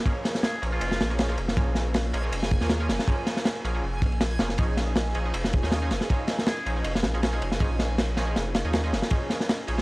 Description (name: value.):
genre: drum and bass, jungle.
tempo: 159 BPM.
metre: 4/4.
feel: swing 54% on 16ths.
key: Bb minor.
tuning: A4 = 440 Hz.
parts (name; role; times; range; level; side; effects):
airy breathy pad; sustained chords; 0.0-9.8 s; Bb3 to Ab4; -37 LUFS; right 1 dB; chorus, phaser, vintage 12-bit sampler grit.
backwards swelling texture; texture; 1.2-9.8 s; Ab5; -42 LUFS; right 3 dB; built-in reverb.
band-passed chord stab; stabs; 0.1-9.8 s; F3 to Ab4; -34 LUFS; right 2 dB; chorus, cassette tape, dub echo.
crunchy breakbeat drum kit; drums; 0.1-9.8 s; kick drum, ride cymbal, snare drum; -26 LUFS; equal; none.
trumpet with metal mute; melody; 0.4-1.1, 6.5-6.7 s; F4 to Ab4; -37 LUFS; equal; dub echo.
saturated sub bass; bass; 0.6-9.8 s; F1 to Eb2; -28 LUFS; equal; tube saturation.
room: little or no reverb.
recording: dry, gritty hardware recording, transformer saturation, vinyl crackle.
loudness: -23 LUFS.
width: side -22 dB against mid.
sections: 0.0-9.8 A section.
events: none.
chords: 0.0 Bbm7.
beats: | 0.06 0.43 0.81 1.19 | 1.57 1.95 2.32 2.70 | 3.08 3.45 3.83 4.21 | 4.59 4.96 5.34 5.72 | 6.10 6.47 6.85 7.23 | 7.61 7.98 8.36 8.74 | 9.11 9.49.